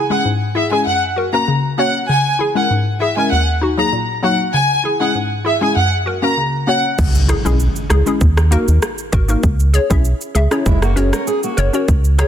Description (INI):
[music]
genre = dancehall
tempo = 98 BPM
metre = 4/4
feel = straight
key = C# dorian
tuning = A4 = 440 Hz
[part]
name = hollow square pluck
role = accompaniment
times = 0.0-12.3 s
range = D#2 to E5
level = -18 LUFS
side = left 2 dB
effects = chorus
[part]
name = warm studio violin section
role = melody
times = 0.1-6.8 s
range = E5 to A#5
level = -17 LUFS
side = equal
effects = ping-pong delay
[part]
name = organ-like FM bass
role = bass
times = 7.0-12.2 s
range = F#1 to D#2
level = -14 LUFS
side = equal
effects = none
[part]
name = island pop drum kit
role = drums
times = 7.0-12.3 s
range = crash cymbal, hi-hat, kick drum, rim click, shaker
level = -18 LUFS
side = equal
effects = overdrive
[part]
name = impact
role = sound effects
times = 7.0-9.4 s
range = none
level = -24 LUFS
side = equal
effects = none
[part]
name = fingerpicked steel-string acoustic guitar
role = arpeggios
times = 10.7-11.9 s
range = G#3 to A#4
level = -21 LUFS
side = right 2 dB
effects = none
[sound]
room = light reverb, digital ambience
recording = dense, heavily limited modern master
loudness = -13 LUFS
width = side -10 dB against mid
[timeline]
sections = 0.0-7.0 A section; 7.0-12.3 B section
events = impact 7.0-9.4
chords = 0.0 C#m; 0.9 F#; 2.1 C#m; 3.3 D#m; 4.5 C#m; 5.8 F#; 7.0 C#m; 8.2 D#m; 9.4 C#m; 10.7 F#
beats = 0.25 0.86 1.48 | 2.09 2.70 3.31 3.93 | 4.54 5.15 5.76 6.38 | 6.99 7.60 8.21 8.82 | 9.44 10.05 10.66 11.27 | 11.88